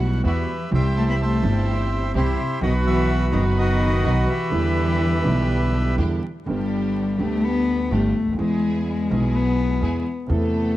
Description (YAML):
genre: tango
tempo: 126 BPM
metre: 4/4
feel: rubato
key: E minor, G major from 6.5 s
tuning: A4 = 444 Hz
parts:
  - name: bandoneon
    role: melody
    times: 0.0-6.0 s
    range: E4 to B5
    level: -26 LUFS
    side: right 1 dB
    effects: none
  - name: warm concert grand piano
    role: accompaniment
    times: 0.0-10.8 s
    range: F#1 to G#4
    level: -25 LUFS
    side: right 2 dB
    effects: none
  - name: clear studio string section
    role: stabs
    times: 0.0-10.8 s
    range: G3 to A4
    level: -32 LUFS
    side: right 1 dB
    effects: none
  - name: upright bass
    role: bass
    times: 0.0-10.8 s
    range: F#1 to E2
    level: -23 LUFS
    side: equal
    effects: none
  - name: warm cello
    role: second line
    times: 0.3-10.8 s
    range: C3 to B3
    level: -25 LUFS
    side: left 4 dB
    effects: none
room: small room reverb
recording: dry, close 1970s-style studio recording, vinyl crackle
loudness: -19 LUFS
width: side -15 dB against mid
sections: 0.0-6.5 A section; 6.5-10.8 B section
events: cello solo 6.5-10.8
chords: 0.0 Emadd9; 0.7 C; 2.6 B; 4.5 Em7; 6.5 G; 8.4 E